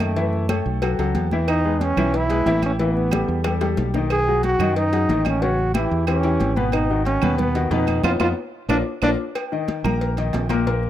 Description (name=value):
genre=latin, salsa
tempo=183 BPM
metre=4/4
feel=straight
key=unclear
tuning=A4 = 440 Hz
part: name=clear trombone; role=melody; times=0.0-9.1 s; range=A3 to G#4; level=-23 LUFS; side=right 1 dB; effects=none
part: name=clear concert grand piano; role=accompaniment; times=0.0-10.9 s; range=Bb2 to Bb5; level=-24 LUFS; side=left 5 dB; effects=none
part: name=fingered electric bass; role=bass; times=0.0-10.9 s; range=Ab1 to Gb2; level=-23 LUFS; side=right 1 dB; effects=none
part: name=agogo bells and timbales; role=percussion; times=0.0-10.7 s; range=none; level=-31 LUFS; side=right 9 dB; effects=none
part: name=claves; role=percussion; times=0.0-10.7 s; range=none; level=-32 LUFS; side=right 16 dB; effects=none
part: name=congas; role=percussion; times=0.0-10.9 s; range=none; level=-28 LUFS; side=equal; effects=none
part: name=cowbell and bongos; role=percussion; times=0.0-10.8 s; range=none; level=-32 LUFS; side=left 5 dB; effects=none
room=little or no reverb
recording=dry, close 1970s-style studio recording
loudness=-18 LUFS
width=side -12 dB against mid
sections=0.0-9.4 A section; 9.4-10.9 B section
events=drum fill 3.4-4.1, 8.4-9.4; band accent 8.0-9.4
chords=0.2 Bsus2; 1.5 E6; 2.8 Asus2; 4.1 B6; 5.4 A13; 6.7 Abm7; 8.0 Ebsus2/F; 8.7 Bb; 9.4 Eb5